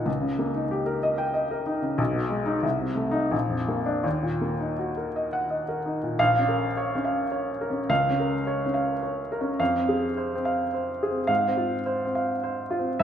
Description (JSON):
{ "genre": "classical, romantic character piece for solo piano", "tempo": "81-107 BPM", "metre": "3/4", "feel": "rubato", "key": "Bb minor from 6.2 s", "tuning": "A4 = 441 Hz", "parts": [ { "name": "warm baby grand piano", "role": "solo", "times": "0.0-13.0 s", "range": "Bb1 to G5", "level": "-24 LUFS", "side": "equal", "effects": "none" } ], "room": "wet recital hall reverb, RT60 1.7 s", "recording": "none", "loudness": "-24 LUFS", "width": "side -9 dB against mid", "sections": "0.0-6.2 A section; 6.2-13.0 B section", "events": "none", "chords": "0.1 Eb7/Db; 2.0 Abm/Cb; 2.6 Cm6; 3.3 Bb; 4.0 Ebm; 6.2 Bbm; 7.9 Bbm/Db; 9.6 Fm; 11.3 Fm/Ab" }